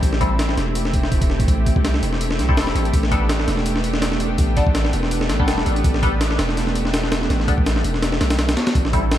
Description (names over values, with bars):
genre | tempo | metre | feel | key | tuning
drum and bass, jungle | 165 BPM | 4/4 | swing 54% on 16ths | unclear | A4 = 440 Hz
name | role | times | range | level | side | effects
lush unison pad | sustained chords | 0.0-9.2 s | A3 to G4 | -25 LUFS | right 1 dB | chorus
band-passed chord stab | stabs | 0.0-9.0 s | G3 to A4 | -27 LUFS | left 2 dB | phaser, analog chorus, dub echo
long sustained 808-style bass | bass | 0.0-9.2 s | E1 to C2 | -22 LUFS | equal | tube saturation
breakbeat sampler-style drum kit | drums | 0.0-9.2 s | hi-hat, kick drum, snare drum | -20 LUFS | equal | none
room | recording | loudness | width
light reverb, digital ambience | echo-heavy mix, vinyl crackle | -17 LUFS | side -12 dB against mid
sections
0.0-9.2 A section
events
none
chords
0.0 Am7; 2.9 Gadd9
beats
| 0.03 0.39 0.75 1.12 | 1.48 1.84 2.21 2.57 | 2.94 3.30 3.66 4.03 | 4.39 4.75 5.12 5.48 | 5.84 6.21 6.57 6.93 | 7.30 7.66 8.03 8.39 | 8.75 9.12